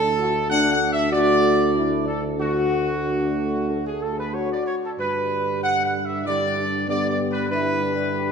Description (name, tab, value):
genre	classical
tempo	95 BPM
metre	4/4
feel	straight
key	unclear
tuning	A4 = 440 Hz
part	clear trumpet section	melody	0.0-8.3 s	F#4 to F#5	-23 LUFS	right 1 dB	none
part	mellow trombone section	sustained chords	0.0-8.3 s	D3 to A3	-29 LUFS	right 4 dB	none
part	warm tuba	bass	0.0-8.3 s	D2 to G2	-27 LUFS	right 3 dB	none
part	mellow French horn section	sustained chords	0.2-8.3 s	B3 to A4	-25 LUFS	left 4 dB	none
room	wet concert hall reverb, RT60 2.2 s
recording	minimal, uncompressed stereo recording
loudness	-20 LUFS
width	side -6 dB against mid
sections	0.0-8.3 A section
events	none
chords	0.0 D; 5.0 G